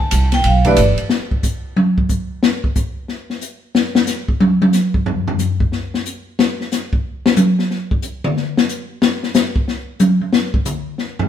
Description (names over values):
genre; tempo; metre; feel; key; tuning
modal jazz; 182 BPM; 4/4; swing 64% on 8ths; unclear; A4 = 441 Hz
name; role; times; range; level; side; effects
vibraphone with medium hard mallets; melody; 0.0-0.7 s; D5 to A5; -18 LUFS; equal; none
upright bass; bass; 0.0-1.0 s; G1 to D2; -15 LUFS; right 2 dB; none
open jazz drum kit; drums; 0.0-11.3 s; hi-hat, kick drum, ride cymbal, snare drum, toms; -16 LUFS; left 2 dB; none
clear concert grand piano; accompaniment; 0.6-0.8 s; Fb3 to B4; -17 LUFS; right 2 dB; none
room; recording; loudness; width
moderate stone room reverb, RT60 1.0 s; band playing live in one room; -15 LUFS; side -9 dB against mid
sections
0.0-1.1 A section; 1.1-11.3 A section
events
vibraphone solo 0.0-1.1; drum solo 1.1-11.3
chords
0.0 G; 1.1 N.C.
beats
0.13 0.46 0.79 | 1.11 1.44 1.77 2.10 | 2.43 2.76 3.09 3.42 | 3.75 4.08 4.41 4.74 | 5.07 5.40 5.73 6.06 | 6.39 6.72 7.05 7.38 | 7.71 8.04 8.36 8.69 | 9.02 9.35 9.68 10.01 | 10.34 10.67 11.00